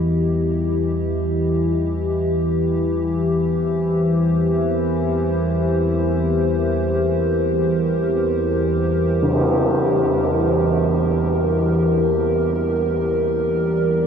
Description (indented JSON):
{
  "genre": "dark ambient drone",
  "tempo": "free time",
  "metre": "none",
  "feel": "none",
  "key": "unclear",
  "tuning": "A4 = 440 Hz",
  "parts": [
    { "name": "dark analog pad", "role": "sustained chords", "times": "0.0-14.1 s", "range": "E4 to D#5", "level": "-21 LUFS", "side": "equal", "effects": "chorus" },
    { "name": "analog drone", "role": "drone", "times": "0.0-14.1 s", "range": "E2 to E3", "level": "-20 LUFS", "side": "equal", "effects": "chorus" },
    { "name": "tam-tam", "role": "percussion", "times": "9.2-9.5 s", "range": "none", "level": "-23 LUFS", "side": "right 1 dB", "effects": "low-pass filter on cymbals" }
  ],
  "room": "moderate huge ambient reverb, RT60 8.7 s",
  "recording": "none",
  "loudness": "-17 LUFS",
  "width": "side -7 dB against mid",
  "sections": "0.0-14.1 A section",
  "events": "none",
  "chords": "0.0 Em; 2.3 Gm"
}